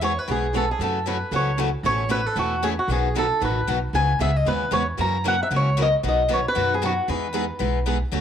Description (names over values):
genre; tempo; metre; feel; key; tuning
acoustic string swing (jazz manouche); 229 BPM; 4/4; swing 56% on 8ths; E major; A4 = 440 Hz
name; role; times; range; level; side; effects
picked swing-style acoustic guitar; melody; 0.0-7.8 s; F#4 to A#5; -23 LUFS; equal; none
picked steel-string acoustic guitar; accompaniment; 0.0-8.2 s; B2 to A4; -28 LUFS; left 10 dB; none
picked steel-string acoustic guitar; accompaniment; 0.0-8.2 s; B2 to C#5; -30 LUFS; right 11 dB; none
upright bass; bass; 0.0-8.2 s; A1 to F#2; -26 LUFS; equal; none
room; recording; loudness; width
moderate spring reverb, RT60 1.1 s; 1960s-style stereo with parts hard left and right; -20 LUFS; side -9 dB against mid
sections
0.0-8.1 A section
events
none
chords
0.0 E6; 0.8 F#m7; 1.8 Aadd9; 2.9 B; 3.9 C#m7; 5.0 F#7; 6.0 B; 7.1 Emaj7